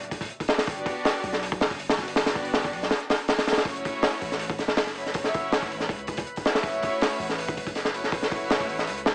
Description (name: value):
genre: drum and bass, jungle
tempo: 161 BPM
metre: 4/4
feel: straight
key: F# phrygian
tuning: A4 = 440 Hz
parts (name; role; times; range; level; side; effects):
- clear symphonic string section; sustained chords; 0.0-9.0 s; A3 to D5; -35 LUFS; equal; vintage 12-bit sampler grit
- long sustained 808-style bass; bass; 0.0-9.1 s; D1 to C#2; -44 LUFS; equal; none
- crunchy breakbeat drum kit; drums; 0.0-9.1 s; hi-hat, kick drum, snare drum; -28 LUFS; equal; none
- drifting glass-harmonics texture; texture; 4.1-9.1 s; B4 to B5; -40 LUFS; equal; chorus, built-in reverb
- breathy flute-like synth lead; melody; 5.2-6.9 s; E5; -37 LUFS; equal; subtle chorus, dub echo
room: light reverb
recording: small speaker sound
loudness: -27 LUFS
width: mono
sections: 0.0-9.1 A section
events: none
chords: 0.0 Gmaj7; 3.7 F#m7